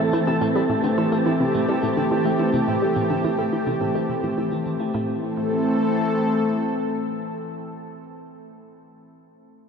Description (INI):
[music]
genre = ambient, sequencer-driven space music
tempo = 106 BPM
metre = 4/4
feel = straight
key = A minor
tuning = A4 = 440 Hz
[part]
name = lush unison pad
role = sustained chords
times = 0.0-8.0 s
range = E3 to A4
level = -22 LUFS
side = equal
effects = chorus
[part]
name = analog pluck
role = riff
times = 0.0-5.2 s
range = A2 to E4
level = -27 LUFS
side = equal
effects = chorus, tape echo
[part]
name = wind-like tuned noise texture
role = texture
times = 0.0-5.0 s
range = A4 to A5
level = -33 LUFS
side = right 2 dB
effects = built-in reverb
[part]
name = electric guitar at the edge of break-up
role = arpeggios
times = 0.1-5.2 s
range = A3 to C5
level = -35 LUFS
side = moving between left 4 dB and right 2 dB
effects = auto-pan, tape echo
[sound]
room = wet cathedral reverb, RT60 5.6 s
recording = in a vast, echoing space, cassette tape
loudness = -20 LUFS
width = side -6 dB against mid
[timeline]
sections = 0.0-4.9 A section; 4.9-7.2 B section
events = fade-out on clean electric guitar 0.0-4.9; filter sweep on synth arpeggio sound 0.0-4.9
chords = 0.0 Am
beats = | 0.41 0.98 1.55 2.11 | 2.68 3.24 3.81 4.38 | 4.94 5.51 6.07 6.64